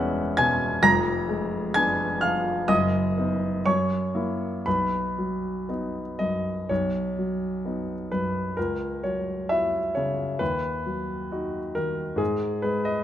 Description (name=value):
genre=classical, romantic character piece for solo piano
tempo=57-69 BPM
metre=2/4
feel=rubato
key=B major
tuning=A4 = 443 Hz
part: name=warm baby grand piano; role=solo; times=0.0-13.0 s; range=E1 to A#6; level=-23 LUFS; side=equal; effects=none
room=moderate recital hall reverb, RT60 1.7 s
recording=close, detailed microphones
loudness=-23 LUFS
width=side -11 dB against mid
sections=0.0-6.7 A section; 6.7-13.0 B section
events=none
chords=0.0 C#m7/E; 0.8 Fdim7; 2.7 B/F#; 3.7 F#7; 4.7 B; 8.6 F#5/C#; 10.4 B/D#; 12.2 G#m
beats=| 0.84 1.76 | 2.69 3.65 | 4.66 5.68 | 6.70 7.64 | 8.57 9.49 | 10.41 11.32 | 12.20